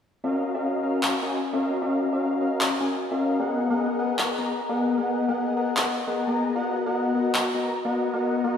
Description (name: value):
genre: future bass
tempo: 152 BPM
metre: 4/4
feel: swing 55% on 16ths, half-time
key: Eb minor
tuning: A4 = 439 Hz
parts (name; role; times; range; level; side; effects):
- big bright polysynth; riff; 0.2-8.6 s; Cb4 to Bb5; -23 LUFS; left 2 dB; cassette tape, analog delay
- electronic handclaps; drums; 1.0-7.4 s; none; -27 LUFS; equal; none
room: wet lush hall reverb, RT60 2.0 s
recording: dreamy mix soaked in reverb, small room ambience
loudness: -23 LUFS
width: side -8 dB against mid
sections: 0.2-8.6 A section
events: none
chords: 0.2 Ebm9; 3.4 Abm9; 6.6 Bmaj7